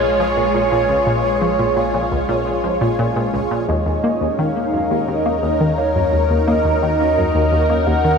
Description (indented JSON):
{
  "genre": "ambient, sequencer-driven space music",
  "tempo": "86 BPM",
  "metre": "4/4",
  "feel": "straight",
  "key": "Eb minor",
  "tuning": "A4 = 440 Hz",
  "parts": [
    { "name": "pulse-width lead", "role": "melody", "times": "0.0-8.2 s", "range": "Db5 to Gb5", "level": "-20 LUFS", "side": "right 1 dB", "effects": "chorus, tape echo" },
    { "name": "lush unison pad", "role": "sustained chords", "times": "0.0-8.2 s", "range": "Ab3 to Db5", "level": "-20 LUFS", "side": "equal", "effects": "chorus, phaser" },
    { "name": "warm sub bass", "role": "bass", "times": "0.0-8.2 s", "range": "Bb1 to Eb2", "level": "-26 LUFS", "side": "equal", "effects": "none" },
    { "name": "pulsing gated texture", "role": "texture", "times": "0.0-8.2 s", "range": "Db4 to Ab5", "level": "-31 LUFS", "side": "equal", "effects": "chorus, built-in reverb" },
    { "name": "analog pluck", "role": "riff", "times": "0.2-8.1 s", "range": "Db2 to Bb3", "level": "-20 LUFS", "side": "left 1 dB", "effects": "chorus, cassette tape, tape echo" }
  ],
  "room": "wet huge ambient reverb, RT60 8.8 s",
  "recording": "none",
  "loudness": "-15 LUFS",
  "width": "side -6 dB against mid",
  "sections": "0.0-8.2 A section",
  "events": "none",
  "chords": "0.0 Bbm7; 3.7 Ebm7"
}